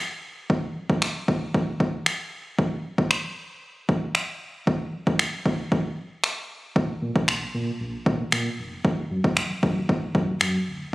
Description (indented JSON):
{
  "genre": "dance-pop",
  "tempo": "115 BPM",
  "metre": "4/4",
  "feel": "straight",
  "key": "unclear",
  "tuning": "A4 = 444 Hz",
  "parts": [
    { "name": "deep house drum kit", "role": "drums", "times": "0.5-10.5 s", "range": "finger snaps, kick drum", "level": "-23 LUFS", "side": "equal", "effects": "none" },
    { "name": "sub bass with octave", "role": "bass", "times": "6.8-10.8 s", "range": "D1 to Bb2", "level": "-29 LUFS", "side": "equal", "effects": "sidechain pumping" }
  ],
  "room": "light reverb",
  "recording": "recorded on a phone in the room, studio reverb",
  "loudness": "-23 LUFS",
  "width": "side -19 dB against mid",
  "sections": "0.0-10.9 A section",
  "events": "none",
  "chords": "none"
}